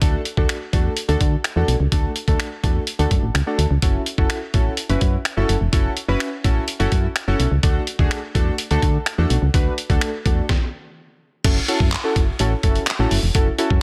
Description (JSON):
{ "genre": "dance-pop", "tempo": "126 BPM", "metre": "4/4", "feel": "straight", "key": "F# minor", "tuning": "A4 = 444 Hz", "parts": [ { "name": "warm analog keys", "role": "accompaniment", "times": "0.0-13.8 s", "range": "A3 to B4", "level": "-27 LUFS", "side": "equal", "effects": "chorus, sidechain pumping" }, { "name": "solid FM bass", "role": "bass", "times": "0.0-13.8 s", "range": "E1 to D3", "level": "-23 LUFS", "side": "equal", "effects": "sidechain pumping" }, { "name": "trip hop sampler-style drum kit", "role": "drums", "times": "0.0-13.8 s", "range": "crash cymbal, finger snaps, handclaps, hi-hat, kick drum, snare drum", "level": "-23 LUFS", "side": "equal", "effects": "soft clipping on snare" } ], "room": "little or no reverb", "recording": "dense, heavily limited modern master", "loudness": "-20 LUFS", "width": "mono", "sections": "0.0-11.4 A section; 11.4-13.8 B section", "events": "stop 10.5-11.4", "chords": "0.0 D; 3.8 F#m7; 7.6 D; 11.4 F#m7" }